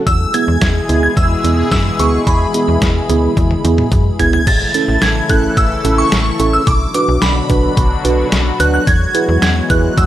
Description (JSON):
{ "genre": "synth-pop", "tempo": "109 BPM", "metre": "4/4", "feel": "straight", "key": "unclear", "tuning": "A4 = 440 Hz", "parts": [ { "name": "sweeping resonant pad", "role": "sustained chords", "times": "0.0-10.1 s", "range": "B2 to A4", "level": "-20 LUFS", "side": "left 3 dB", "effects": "chorus" }, { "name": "shimmering bell with halo", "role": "melody", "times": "0.1-10.1 s", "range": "B5 to A6", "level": "-18 LUFS", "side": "right 1 dB", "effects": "ensemble chorus" }, { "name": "slap-like FM bass", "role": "bass", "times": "0.1-10.1 s", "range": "G#1 to F#2", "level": "-16 LUFS", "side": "equal", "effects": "none" }, { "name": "detuned 8-bit digital drum machine", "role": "drums", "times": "0.1-10.1 s", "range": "crash cymbal, hi-hat, kick drum, snare drum, toms", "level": "-16 LUFS", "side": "equal", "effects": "none" }, { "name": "mellow tine electric piano", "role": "accompaniment", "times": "0.3-9.9 s", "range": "B3 to B4", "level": "-18 LUFS", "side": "right 5 dB", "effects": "medium stereo tremolo" } ], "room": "light reverb", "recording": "none", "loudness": "-11 LUFS", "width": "side -12 dB against mid", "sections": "0.0-4.5 A section; 4.5-10.1 B section", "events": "drum fill 3.4-4.5", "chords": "0.1 E; 4.5 A; 6.7 Bm; 8.9 Eadd9", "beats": "| 0.07 0.62 1.17 1.72 | 2.27 2.82 3.37 3.92 | 4.47 5.02 5.57 6.12 | 6.67 7.22 7.77 8.32 | 8.87 9.42 9.97" }